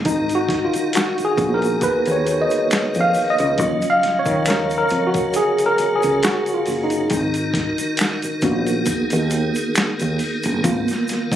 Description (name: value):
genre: R&B, neo-soul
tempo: 68 BPM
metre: 4/4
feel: swing 55% on 16ths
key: G# dorian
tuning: A4 = 440 Hz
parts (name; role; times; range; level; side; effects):
- tine electric piano; accompaniment; 0.0-11.4 s; F#3 to E#5; -19 LUFS; equal; overdrive, fast stereo tremolo
- tonewheel organ; sustained chords; 0.0-11.4 s; C#3 to A#4; -28 LUFS; right 1 dB; chorus vibrato, slow rotary speaker
- woody fretless electric bass; bass; 0.0-11.4 s; F#1 to D#3; -23 LUFS; equal; none
- boom bap sampler-style drum kit; drums; 0.1-11.4 s; hi-hat, kick drum, snare drum; -24 LUFS; equal; none
- egg shaker and finger snaps; percussion; 0.1-11.4 s; none; -29 LUFS; equal; none
room: light reverb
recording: recorded on a phone in the room, studio reverb, compression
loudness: -17 LUFS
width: side -11 dB against mid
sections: 0.1-11.4 A section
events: tine electric piano solo 0.1-11.4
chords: 0.1 G#m9; 3.6 D#m9; 7.1 G#m9; 10.6 G#m69